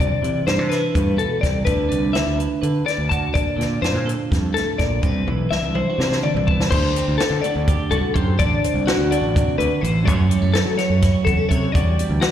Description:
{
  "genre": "math rock and midwest emo",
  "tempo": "250 BPM (eighths)",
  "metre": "7/8",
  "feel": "straight",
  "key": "unclear",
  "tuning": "A4 = 440 Hz",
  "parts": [
    { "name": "twelve-string electric guitar", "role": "accompaniment", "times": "0.0-12.3 s", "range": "E2 to B4", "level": "-24 LUFS", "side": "right 6 dB", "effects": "lush chorus, slapback echo" },
    { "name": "twelve-string electric guitar", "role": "arpeggios", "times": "0.0-12.3 s", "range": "F#4 to A5", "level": "-23 LUFS", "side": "left 7 dB", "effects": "vibrato effect, slapback echo" },
    { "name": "growling fingered electric bass", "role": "bass", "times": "0.0-12.2 s", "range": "A1 to F#3", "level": "-22 LUFS", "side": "equal", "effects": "overdrive" },
    { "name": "compact cocktail drum kit", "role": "drums", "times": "0.0-12.3 s", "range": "crash cymbal, hi-hat, kick drum, snare drum, toms", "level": "-22 LUFS", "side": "equal", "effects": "none" }
  ],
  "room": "little or no reverb",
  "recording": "live gig heard through the venue's PA, recital hall reverb",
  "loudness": "-17 LUFS",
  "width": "side -10 dB against mid",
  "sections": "0.0-6.7 A section; 6.7-12.3 B section",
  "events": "drum fill 5.3-6.7",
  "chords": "0.0 C69; 1.7 D69; 3.3 Bbmaj7; 5.0 Cmaj9; 6.7 D7; 10.1 F#m7; 11.7 Em9",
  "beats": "0.23 0.47 0.71 0.95 1.19 1.43 | 1.67 1.91 2.15 2.39 2.63 2.87 3.11 | 3.35 3.59 3.83 4.07 4.31 4.55 4.79 | 5.03 5.27 5.51 5.75 5.99 6.23 6.47 | 6.71 6.95 7.19 7.43 7.67 7.91 8.15 | 8.39 8.63 8.87 9.11 9.35 9.59 9.83 | 10.06 10.30 10.54 10.78 11.02 11.26 11.50 | 11.74 11.98 12.22"
}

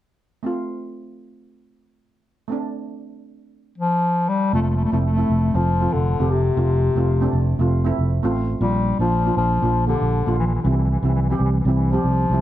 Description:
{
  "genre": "calypso",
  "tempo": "118 BPM",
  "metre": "4/4",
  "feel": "swing 54% on 16ths",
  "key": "F major",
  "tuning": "A4 = 439 Hz",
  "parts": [
    { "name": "steel pan", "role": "accompaniment", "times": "0.4-12.4 s", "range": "G3 to G4", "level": "-25 LUFS", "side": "right 2 dB", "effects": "none" },
    { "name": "warm bass clarinet", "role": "melody", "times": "3.8-12.4 s", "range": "C3 to A3", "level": "-21 LUFS", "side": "left 3 dB", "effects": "ping-pong delay" },
    { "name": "fingered electric bass", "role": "bass", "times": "4.5-12.4 s", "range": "F1 to C2", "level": "-20 LUFS", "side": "right 1 dB", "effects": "none" }
  ],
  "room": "moderate studio ambience, RT60 0.5 s",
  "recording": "none",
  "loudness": "-18 LUFS",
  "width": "side -13 dB against mid",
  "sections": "0.5-4.5 A section; 4.5-12.4 B section",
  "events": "none",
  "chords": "0.5 F; 8.6 Bb; 10.6 C",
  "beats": "| 0.45 0.96 1.47 1.98 | 2.49 3.00 3.51 4.02 | 4.53 5.04 5.55 6.06 | 6.57 7.08 7.59 8.10 | 8.61 9.12 9.63 10.13 | 10.64 11.15 11.66 12.17"
}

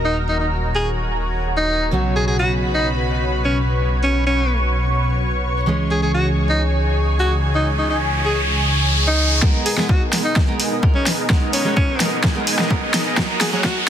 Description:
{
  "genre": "EDM, festival progressive house",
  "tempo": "128 BPM",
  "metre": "4/4",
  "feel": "straight",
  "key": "unclear",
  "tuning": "A4 = 440 Hz",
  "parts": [
    { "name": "clear alto saxophone", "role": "melody", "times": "0.0-13.8 s", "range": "C#4 to G#4", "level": "-23 LUFS", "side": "equal", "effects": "dub echo" },
    { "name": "fingerpicked steel-string acoustic guitar", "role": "accompaniment", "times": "0.0-13.6 s", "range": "C#3 to C#5", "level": "-26 LUFS", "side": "right 3 dB", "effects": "sidechain pumping" },
    { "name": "lush unison pad", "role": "sustained chords", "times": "0.0-13.9 s", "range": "A#3 to C#6", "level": "-26 LUFS", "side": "left 1 dB", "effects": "chorus, phaser, sidechain pumping" },
    { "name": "detuned saw bass", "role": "bass", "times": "0.0-9.4 s", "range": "D#1 to C#2", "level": "-20 LUFS", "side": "equal", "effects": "sidechain pumping" },
    { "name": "riser", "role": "sound effects", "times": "7.1-13.9 s", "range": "none", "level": "-24 LUFS", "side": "right 1 dB", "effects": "none" },
    { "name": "dense compressed supersaw", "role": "riff", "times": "9.4-13.8 s", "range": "B3 to G#5", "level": "-25 LUFS", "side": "equal", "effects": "sidechain pumping, low-pass filter, dub echo" },
    { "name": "big-room dance drum kit", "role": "drums", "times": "9.4-13.7 s", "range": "hi-hat, snare drum", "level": "-20 LUFS", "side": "equal", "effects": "overdrive, low-pass filter on snare, studio reverb, low-pass filter on hats" },
    { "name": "electronic kick drum", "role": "drums", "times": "9.4-13.7 s", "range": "none", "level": "-18 LUFS", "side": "equal", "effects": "studio reverb" }
  ],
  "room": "light reverb, digital ambience",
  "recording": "dense, heavily limited modern master, high-pass filter",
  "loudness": "-16 LUFS",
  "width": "side -9 dB against mid",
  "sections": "0.0-9.4 A section; 9.4-13.9 B section",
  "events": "riser 7.1-9.4, 9.4-13.9; build-up 9.4-13.9; drum fill 9.4-13.9; filter sweep on supersaw synth 9.4-13.9; filter sweep 9.4-13.9",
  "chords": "0.0 D#m; 1.9 Bsus2; 5.7 C#m; 9.4 G#madd9; 13.2 D#m",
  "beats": "| 0.05 0.52 0.99 1.46 | 1.93 2.39 2.86 3.33 | 3.80 4.27 4.74 5.21 | 5.67 6.14 6.61 7.08 | 7.55 8.02 8.49 8.96 | 9.43 9.89 10.36 10.83 | 11.30 11.77 12.24 12.71 | 13.18 13.64"
}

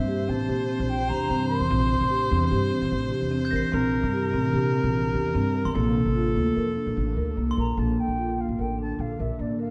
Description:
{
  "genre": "contemporary instrumental, contemporary",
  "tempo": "148 BPM",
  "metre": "5/4",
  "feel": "straight",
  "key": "Bb lydian",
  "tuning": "A4 = 438 Hz",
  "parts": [
    { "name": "mellow jazz flute", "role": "melody", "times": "0.0-3.1, 7.6-9.7 s", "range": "D5 to C6", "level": "-32 LUFS", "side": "equal", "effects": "none" },
    { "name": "clear viola", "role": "second line", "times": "0.0-7.6 s", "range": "A4 to C5", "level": "-34 LUFS", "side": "equal", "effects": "none" },
    { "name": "ethereal airy pad", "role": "sustained chords", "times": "0.0-9.7 s", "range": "C3 to A4", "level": "-34 LUFS", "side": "equal", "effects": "ensemble chorus, built-in reverb" },
    { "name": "upright bass", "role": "bass", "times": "0.0-9.7 s", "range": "A1 to Bb2", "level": "-30 LUFS", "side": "equal", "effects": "none" },
    { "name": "marimba with medium mallets", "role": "arpeggios", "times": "0.1-9.7 s", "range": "Bb3 to Bb4", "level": "-29 LUFS", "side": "equal", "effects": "none" },
    { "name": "glockenspiel with brass mallets", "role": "texture", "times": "3.5-7.9 s", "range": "C6 to C7", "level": "-39 LUFS", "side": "equal", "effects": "none" }
  ],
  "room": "moderate scoring stage reverb, RT60 1.7 s",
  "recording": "dark, warm production",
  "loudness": "-25 LUFS",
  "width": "mono",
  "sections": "0.0-7.8 A section; 7.8-9.7 B section",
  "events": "none",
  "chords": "0.0 Cadd9; 5.8 Bbmaj7",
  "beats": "0.08 0.49 0.89 1.30 | 1.70 2.11 2.51 2.92 3.32 | 3.73 4.13 4.54 4.94 5.34 | 5.75 6.15 6.56 6.96 7.37 | 7.77 8.18 8.58 8.99 9.39"
}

